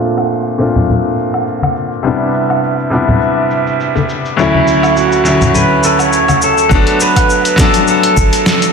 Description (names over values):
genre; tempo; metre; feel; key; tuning
sunset chillout; 103 BPM; 4/4; swing 55% on 16ths; G major; A4 = 440 Hz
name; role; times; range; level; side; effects
bright grand piano; accompaniment; 0.0-8.7 s; D2 to F4; -13 LUFS; moving between left 4 dB and right 4 dB; auto-pan, low-pass filter, ping-pong delay
dusty soul sampler-style drum kit; drums; 0.0-8.7 s; cabasa, hi-hat, snare drum, woodblock; -18 LUFS; left 1 dB; none
bongos and congas; percussion; 0.0-6.4 s; none; -17 LUFS; left 2 dB; none
pedal steel guitar; melody; 4.4-8.7 s; E4 to C#5; -12 LUFS; equal; ping-pong delay
round analog bass; bass; 6.7-8.3 s; G1; -14 LUFS; right 1 dB; none
electronic kick drum; drums; 6.7-8.3 s; none; -14 LUFS; right 1 dB; none
room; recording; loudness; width
wet concert hall reverb, RT60 2.0 s, digital ambience; dense, heavily limited modern master, low-pass filter; -10 LUFS; side -5 dB against mid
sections
0.0-6.7 A section; 6.7-8.7 B section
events
filter sweep on grand piano 0.0-6.7; filter sweep 0.0-6.7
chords
0.0 Bbmaj9; 2.1 Cmaj9; 4.4 Dmaj9; 6.7 Gmaj9